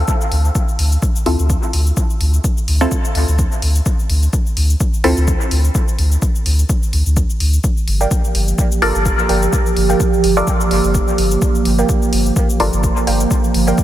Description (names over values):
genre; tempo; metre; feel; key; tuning
dub techno; 127 BPM; 4/4; swing 56% on 16ths; D minor; A4 = 441 Hz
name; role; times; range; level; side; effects
warm sub bass; bass; 0.0-13.7 s; G1 to D2; -15 LUFS; equal; sidechain pumping
electronic kick drum; drums; 0.1-13.8 s; none; -17 LUFS; equal; none
electronic shaker and hi-hat; drums; 0.1-13.8 s; none; -25 LUFS; left 2 dB; none
filtered dub chord stab; stabs; 1.3-13.8 s; C4 to D5; -21 LUFS; left 1 dB; phaser, cassette tape, sidechain pumping, dub echo
warbly tape-like pad; sustained chords; 8.0-13.8 s; F3 to G4; -18 LUFS; right 3 dB; chorus, built-in reverb, vintage 12-bit sampler grit, sidechain pumping
warbly dusty pluck; riff; 8.0-13.8 s; Bb4 to G5; -24 LUFS; right 2 dB; chorus, sidechain pumping, dub echo
room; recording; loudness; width
light reverb; none; -13 LUFS; side -13 dB against mid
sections
0.0-13.8 A section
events
none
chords
0.0 Dm7; 7.6 Gm7